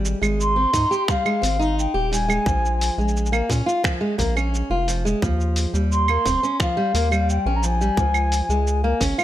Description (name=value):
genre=folktronica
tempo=87 BPM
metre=4/4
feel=straight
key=Ab major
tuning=A4 = 439 Hz
part: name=fingerpicked steel-string acoustic guitar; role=arpeggios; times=0.0-9.2 s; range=F3 to G4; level=-24 LUFS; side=equal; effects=digital delay
part: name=round analog bass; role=bass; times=0.0-9.1 s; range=Eb1 to Bb2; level=-22 LUFS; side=equal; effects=none
part: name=lo-fi sampler-style drum kit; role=drums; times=0.1-9.2 s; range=claves, finger snaps, hi-hat, shaker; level=-27 LUFS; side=right 3 dB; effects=none
part: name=mellow wooden flute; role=melody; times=0.4-9.0 s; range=F5 to C6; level=-23 LUFS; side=left 1 dB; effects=vintage 12-bit sampler grit, digital delay
part: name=electronic kick drum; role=drums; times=0.7-9.1 s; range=none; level=-24 LUFS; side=equal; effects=none
room=light reverb, digital ambience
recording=none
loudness=-18 LUFS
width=side -12 dB against mid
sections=0.0-9.2 A section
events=none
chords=0.0 Abmaj7; 2.5 Bbm7; 5.2 Eb69; 8.0 Db6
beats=0.39 1.07 1.76 | 2.45 3.14 3.83 4.52 | 5.21 5.90 6.59 7.28 | 7.97 8.66